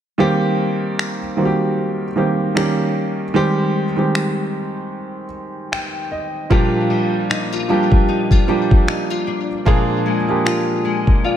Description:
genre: contemporary R&B.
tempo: 76 BPM.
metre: 4/4.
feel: swing 58% on 16ths.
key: C minor.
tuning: A4 = 440 Hz.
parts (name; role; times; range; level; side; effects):
warm concert grand piano; accompaniment; 0.2-11.4 s; Bb2 to G5; -18 LUFS; right 2 dB; none.
smooth R&B drum kit; drums; 1.0-11.2 s; finger snaps, kick drum; -17 LUFS; left 1 dB; vintage 12-bit sampler grit.
nylon-string guitar; arpeggios; 6.5-11.4 s; Bb2 to F4; -22 LUFS; left 6 dB; ensemble chorus, ping-pong delay.
room: light reverb, small room ambience.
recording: none.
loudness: -16 LUFS.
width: side -10 dB against mid.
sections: 0.2-11.4 A section.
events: grand piano fill 5.3-6.5.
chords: 0.2 Cm7; 2.6 Eb7; 3.3 Abmaj7; 6.5 Gm7/Bb; 9.7 Bb7.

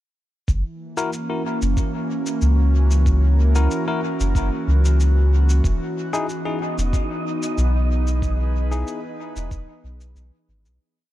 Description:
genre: ambient dub.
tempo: 93 BPM.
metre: 4/4.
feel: straight.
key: F# mixolydian.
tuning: A4 = 440 Hz.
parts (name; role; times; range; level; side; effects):
airy breathy pad; sustained chords; 0.5-10.8 s; E3 to B4; -26 LUFS; right 1 dB; chorus.
soft dub sub bass; bass; 0.5-10.8 s; E1 to C#2; -17 LUFS; equal; none.
cabasa; drums; 0.5-10.8 s; none; -37 LUFS; left 2 dB; dub echo.
electronic kick drum; drums; 0.5-9.6 s; none; -22 LUFS; equal; none.
bell-like tine electric piano; stabs; 1.0-9.0 s; D#4 to A#4; -29 LUFS; left 4 dB; low-pass filter, dub echo.
wind-like tuned noise texture; texture; 6.4-10.8 s; D#4 to D#5; -33 LUFS; right 2 dB; built-in reverb.
room: little or no reverb.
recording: echo-heavy mix.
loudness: -18 LUFS.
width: side -14 dB against mid.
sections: 0.5-10.8 groove.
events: fade-out 7.4-10.8.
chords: 0.5 F#7; 5.6 Emaj7.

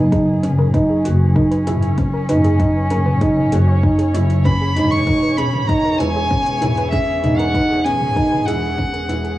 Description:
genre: piano and strings electronica.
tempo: 97 BPM.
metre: 4/4.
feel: straight.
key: unclear.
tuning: A4 = 440 Hz.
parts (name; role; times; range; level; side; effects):
dark string quartet; sustained chords; 0.0-9.4 s; E3 to D#5; -25 LUFS; right 1 dB; sidechain pumping.
soft round pluck; arpeggios; 0.0-9.4 s; G#4 to C#5; -30 LUFS; left 1 dB; chorus, sidechain pumping, analog delay.
felt-muted upright piano; riff; 0.0-9.3 s; C#4 to F#4; -20 LUFS; right 1 dB; analog delay.
dark studio double bass section; bass; 0.0-9.3 s; E1 to F#1; -19 LUFS; equal; sidechain pumping.
deep house drum kit; drums; 0.1-9.4 s; hi-hat, toms; -26 LUFS; equal; overdrive, small room ambience.
electronic kick drum; drums; 0.1-8.9 s; none; -21 LUFS; equal; overdrive, small room ambience.
clear violin; melody; 4.4-9.4 s; E5 to C#6; -21 LUFS; equal; cassette tape, analog delay.
room: moderate studio ambience, RT60 0.5 s.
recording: home recording on cassette, small room ambience.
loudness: -14 LUFS.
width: side -15 dB against mid.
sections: 0.0-9.4 A section.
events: fade-out 7.7-9.4.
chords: 0.0 F#sus2; 4.5 E6.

